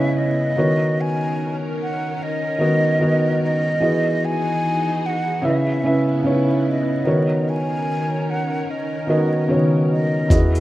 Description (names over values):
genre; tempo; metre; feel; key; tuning
lo-fi hip hop; 74 BPM; 4/4; swing 59% on 16ths; B major; A4 = 439 Hz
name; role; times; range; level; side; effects
breathy concert flute; melody; 0.0-10.6 s; D#5 to G#5; -25 LUFS; equal; low-pass filter, tape echo
felt-muted upright piano; accompaniment; 0.0-10.6 s; C#3 to E5; -19 LUFS; equal; cassette tape, low-pass filter
soft string machine; sustained chords; 0.0-10.6 s; C#3 to D#5; -28 LUFS; equal; ensemble chorus, low-pass filter
round analog bass; bass; 10.3-10.6 s; E2; -17 LUFS; equal; none
dusty soul sampler-style drum kit; drums; 10.3-10.6 s; hi-hat, kick drum, shaker; -16 LUFS; equal; none
room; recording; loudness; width
light reverb, digital ambience; rough home demo mix, vinyl crackle; -17 LUFS; side -15 dB against mid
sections
0.0-10.6 A section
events
none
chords
0.0 C#m7; 0.6 Bmaj7/D#; 3.8 Emaj9; 5.4 C#m7; 7.1 Bmaj7/D#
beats
| 0.57 1.38 2.19 3.00 | 3.81 4.62 5.43 6.25 | 7.06 7.87 8.68 9.49 | 10.30